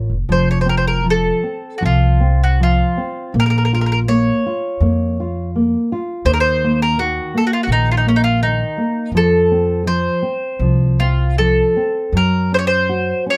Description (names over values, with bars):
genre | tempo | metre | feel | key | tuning
fado-style ballad | 77-84 BPM | 4/4 | rubato | unclear | A4 = 438 Hz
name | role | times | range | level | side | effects
nylon-string guitar | accompaniment | 0.0-13.4 s | Eb3 to Db5 | -22 LUFS | equal | none
upright bass | bass | 0.0-13.1 s | F1 to Gb2 | -20 LUFS | equal | none
mandolin | melody | 0.3-13.4 s | Db4 to Db5 | -21 LUFS | equal | none
room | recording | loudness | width
light reverb | close, detailed microphones | -17 LUFS | mono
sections
0.3-13.4 A section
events
none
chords
0.3 F; 3.3 Bbm; 6.3 Eb5; 9.1 F; 12.1 Gb